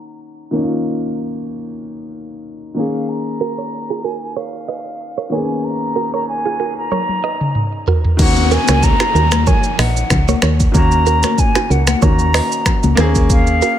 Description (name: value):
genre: afrobeats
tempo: 94 BPM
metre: 4/4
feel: swing 55% on 16ths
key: Eb minor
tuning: A4 = 440 Hz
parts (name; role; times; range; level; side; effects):
- mellow concert flute; melody; 0.0-13.8 s; F5 to Bb5; -21 LUFS; equal; tape echo
- warm concert grand piano; accompaniment; 0.0-13.8 s; Eb3 to Ab4; -22 LUFS; left 2 dB; none
- direct-recorded clean electric guitar; riff; 3.4-13.8 s; Eb4 to Eb5; -23 LUFS; right 11 dB; spring reverb
- afro-pop drum kit; drums; 6.9-13.8 s; crash cymbal, finger snaps, hi-hat, kick drum, rim click, shaker, toms; -16 LUFS; equal; none
- solid FM bass; bass; 8.2-13.6 s; Bb1 to Eb2; -15 LUFS; equal; none
- downlifter; sound effects; 8.2-13.3 s; none; -25 LUFS; left 2 dB; none
- congas; percussion; 8.7-13.1 s; none; -23 LUFS; left 9 dB; none
room: digital ambience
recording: low-pass filter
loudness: -13 LUFS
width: side -10 dB against mid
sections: 0.0-8.2 A section; 8.2-13.8 B section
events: filter sweep 0.0-8.2; drum fill 6.9-8.2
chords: 0.0 Ebm7; 2.8 Bbm7/Eb; 8.2 Ebm7; 13.0 Bbm7